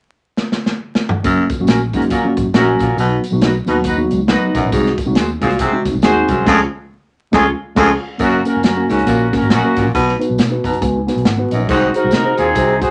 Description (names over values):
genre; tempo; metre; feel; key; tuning
uptempo 1960s-style soul; 138 BPM; 4/4; swing 60% on 8ths; F# major; A4 = 441 Hz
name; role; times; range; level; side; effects
natural country drum kit; drums; 0.4-12.9 s; crash cymbal, hi-hat, kick drum, snare drum, toms; -20 LUFS; equal; none
mellow tine electric piano; accompaniment; 1.2-12.9 s; F#3 to A#5; -20 LUFS; equal; none
growling baritone saxophone; riff; 1.2-12.8 s; E#2 to B#2; -21 LUFS; equal; none
vintage muted fingered electric bass; bass; 1.2-12.8 s; F#1 to B#2; -24 LUFS; equal; none
tambourine; percussion; 1.2-12.9 s; none; -39 LUFS; equal; none
warm horn section; second line; 1.7-12.9 s; A#3 to C#5; -20 LUFS; equal; none
room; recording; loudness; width
moderate small room reverb, RT60 0.6 s; vinyl crackle, nothing above 10.5 kHz; -15 LUFS; mono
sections
0.0-1.2 A section; 1.2-8.2 B section; 8.2-12.9 C section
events
drum fill 0.4-1.2; band accent 6.5-8.2; tine electric piano fill 10.4-11.7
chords
0.0 N.C.; 1.2 F#; 3.0 B; 4.7 G#7/B#; 6.5 C#; 8.2 F#; 9.9 B; 11.7 G#7/B#